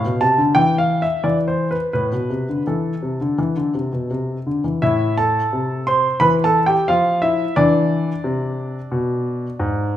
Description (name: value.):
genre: classical-period piano sonatina.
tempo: 82-90 BPM.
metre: 4/4.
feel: rubato.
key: A minor.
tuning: A4 = 438 Hz.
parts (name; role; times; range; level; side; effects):
clear grand piano; solo; 0.0-10.0 s; G#2 to C6; -17 LUFS; equal; none.
room: moderate recital hall reverb, RT60 1.3 s.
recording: minimal, uncompressed stereo recording.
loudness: -17 LUFS.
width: side -11 dB against mid.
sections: 0.0-4.8 A section; 4.8-10.0 B section.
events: none.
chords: 0.0 F; 0.5 N.C.; 1.9 Am; 7.6 E7.